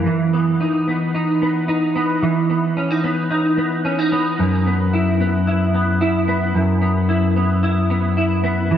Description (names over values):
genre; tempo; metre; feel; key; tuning
dream pop; 111 BPM; 4/4; straight; unclear; A4 = 440 Hz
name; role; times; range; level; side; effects
semi-hollow electric guitar; solo; 0.0-8.8 s; F#2 to E4; -16 LUFS; equal; ensemble chorus, analog delay
room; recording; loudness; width
wet plate reverb, RT60 3.1 s; dreamy mix soaked in reverb; -16 LUFS; side -10 dB against mid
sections
0.1-8.8 A section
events
none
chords
0.1 E5; 4.4 F#7sus4